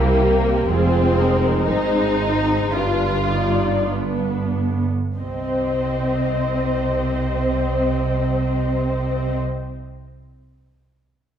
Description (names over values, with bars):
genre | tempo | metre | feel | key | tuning
classical, slow romantic movement for string orchestra | 44-61 BPM | 4/4 | rubato | C minor | A4 = 437 Hz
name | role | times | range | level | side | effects
muted symphonic violin section | melody | 0.0-9.4 s | G4 to Eb5 | -28 LUFS | left 7 dB | none
muted symphonic violin section | second line | 0.0-9.4 s | Bb3 to F4 | -22 LUFS | left 2 dB | none
muted symphonic viola section | accompaniment | 0.0-9.4 s | G3 to C5 | -25 LUFS | right 2 dB | none
muted symphonic cello section | bass | 0.0-9.4 s | F2 to C3 | -27 LUFS | right 3 dB | none
muted symphonic double bass section | bass | 0.0-9.4 s | F1 to C2 | -24 LUFS | right 3 dB | none
room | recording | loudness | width
moderate concert hall reverb, RT60 1.7 s | dark, warm production | -18 LUFS | side -9 dB against mid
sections
0.0-5.2 A section; 5.2-9.8 B section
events
slowing down 0.0-5.2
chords
0.0 C7; 0.7 Fm; 2.7 G7; 5.2 Cm